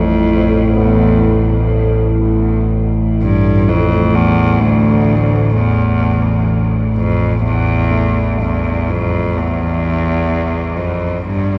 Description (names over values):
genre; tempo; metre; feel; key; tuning
dark ambient drone; 63 BPM; 4/4; straight; unclear; A4 = 440 Hz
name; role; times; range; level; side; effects
clear cello; melody; 0.0-11.6 s; D2 to G2; -18 LUFS; equal; diffuse ambient delay
analog drone; drone; 0.0-11.6 s; A1 to A2; -16 LUFS; equal; chorus
warm grand piano; arpeggios; 0.8-11.6 s; G2 to B3; -30 LUFS; equal; none
room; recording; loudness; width
wet huge ambient reverb, RT60 7.5 s; worn, warbling old tape, cassette tape, warbly pitch drift; -14 LUFS; mono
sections
0.0-11.6 A section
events
filter sweep on synth drone 0.0-11.6; fade-out 6.8-11.6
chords
0.0 A5